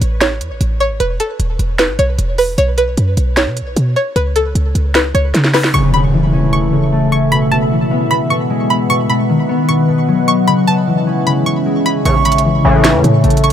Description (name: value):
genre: hip hop, trap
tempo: 152 BPM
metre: 4/4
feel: half-time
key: unclear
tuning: A4 = 439 Hz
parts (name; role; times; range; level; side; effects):
- string-like resonator pluck; melody; 0.0-13.5 s; A4 to C#6; -18 LUFS; equal; chorus, phaser, tape echo
- short 808-style bass; bass; 0.0-5.7, 12.1-13.5 s; D#1 to C#3; -15 LUFS; equal; none
- trap drum kit; drums; 0.0-5.7, 12.1-13.5 s; hi-hat, snare drum; -17 LUFS; right 1 dB; none
- concert harp; accompaniment; 5.7-13.5 s; B2 to C#4; -14 LUFS; left 2 dB; none
- deep dark ambient pad; sustained chords; 6.1-13.5 s; C#3 to F#5; -18 LUFS; right 1 dB; chorus, built-in reverb
- impact; sound effects; 5.7-7.3 s; none; -19 LUFS; equal; none
- breathy bright jazz flute; second line; 12.1-12.4 s; C#6; -19 LUFS; right 9 dB; tape echo
- sync-sweep polysynth; stabs; 12.1-13.0 s; E2 to E3; -16 LUFS; left 2 dB; chorus, tape echo
room: little or no reverb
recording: none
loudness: -11 LUFS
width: side -9 dB against mid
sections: 0.0-5.7 A section; 5.7-13.5 B section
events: drum fill 5.3-5.7; impact 5.7-7.3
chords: 0.0 A; 1.0 E5; 2.6 B5; 4.2 Aadd9/C#; 5.7 A; 7.3 E; 8.9 B; 10.5 C#m; 12.1 A